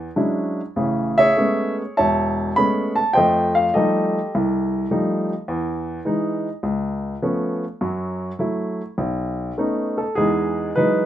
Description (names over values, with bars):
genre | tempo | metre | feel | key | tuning
solo jazz | 102 BPM | 4/4 | swing 69% on 8ths, rubato | E major | A4 = 439 Hz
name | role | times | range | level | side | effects
warm grand piano | solo | 0.0-11.1 s | E1 to B5 | -19 LUFS | equal | none
room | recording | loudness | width
light reverb | minimal, uncompressed stereo recording | -19 LUFS | side -11 dB against mid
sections
0.0-10.2 A section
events
none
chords
0.0 E13; 0.8 Amaj9; 3.2 F9; 5.5 Emaj7; 6.6 C#aug7; 7.8 F#m7; 9.0 B9; 10.2 Emaj9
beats
0.15 | 0.76 1.36 1.97 2.57 | 3.16 3.74 4.33 4.90 | 5.48 6.05 6.62 7.20 | 7.78 8.36 8.96 9.57 | 10.18 10.77